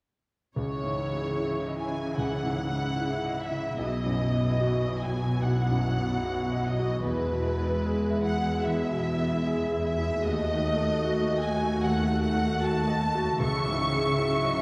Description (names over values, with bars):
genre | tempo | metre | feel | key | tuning
cinematic, emotional film score for orchestra | 75 BPM | 4/4 | rubato | C# minor | A4 = 440 Hz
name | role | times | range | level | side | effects
warm studio violin section | melody | 0.6-14.6 s | B4 to C#6 | -34 LUFS | equal | none
bright grand piano | accompaniment | 0.6-14.6 s | B1 to E5 | -32 LUFS | equal | none
warm symphonic viola section | accompaniment | 0.6-14.6 s | E3 to E5 | -35 LUFS | equal | none
warm symphonic cello section | bass | 0.6-14.6 s | D#2 to C#3 | -34 LUFS | equal | none
room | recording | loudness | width
wet scoring stage reverb, RT60 1.8 s | heard from further back in the room | -28 LUFS | mono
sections
0.6-14.6 A section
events
none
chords
0.6 C#madd9; 3.8 B; 7.1 E; 10.2 D#dim; 13.4 C#madd9